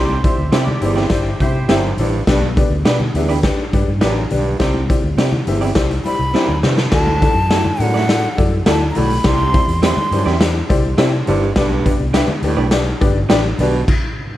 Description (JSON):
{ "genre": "uptempo 1960s-style soul", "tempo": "103 BPM", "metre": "4/4", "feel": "straight", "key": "unclear", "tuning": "A4 = 441 Hz", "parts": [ { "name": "breathy hollow jazz flute", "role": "melody", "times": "0.0-0.5, 6.1-10.4 s", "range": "F#5 to C6", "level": "-22 LUFS", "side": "equal", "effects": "analog delay" }, { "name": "mellow horn section", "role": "second line", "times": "0.0-1.9 s", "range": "E4 to E5", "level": "-27 LUFS", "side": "right 2 dB", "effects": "none" }, { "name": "warm upright piano", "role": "accompaniment", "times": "0.0-13.8 s", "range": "B2 to E5", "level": "-21 LUFS", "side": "left 5 dB", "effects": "none" }, { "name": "breathy baritone saxophone", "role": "riff", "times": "0.0-13.8 s", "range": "D2 to C3", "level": "-23 LUFS", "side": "right 5 dB", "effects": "none" }, { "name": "vintage muted fingered electric bass", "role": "bass", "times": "0.0-13.8 s", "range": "G1 to C3", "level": "-20 LUFS", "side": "equal", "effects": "none" }, { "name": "congas", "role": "percussion", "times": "0.1-13.7 s", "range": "none", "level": "-28 LUFS", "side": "left 1 dB", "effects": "none" }, { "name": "raw garage drum kit", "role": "drums", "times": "0.2-14.0 s", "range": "crash cymbal, hi-hat, kick drum, snare drum", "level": "-18 LUFS", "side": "equal", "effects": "none" }, { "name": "electric guitar through a small old amp", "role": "stabs", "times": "0.5-13.4 s", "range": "A3 to D5", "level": "-21 LUFS", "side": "right 5 dB", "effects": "none" } ], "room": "light reverb", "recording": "vinyl crackle", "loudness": "-13 LUFS", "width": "side -14 dB against mid", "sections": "0.0-6.9 A section; 6.9-14.4 B section", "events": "drum fill 6.3-6.9; stop 13.9-14.4", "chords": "0.0 Cadd9; 2.3 G/B; 4.6 Cadd9; 6.9 Dadd9; 9.2 Cadd9; 11.6 G/B" }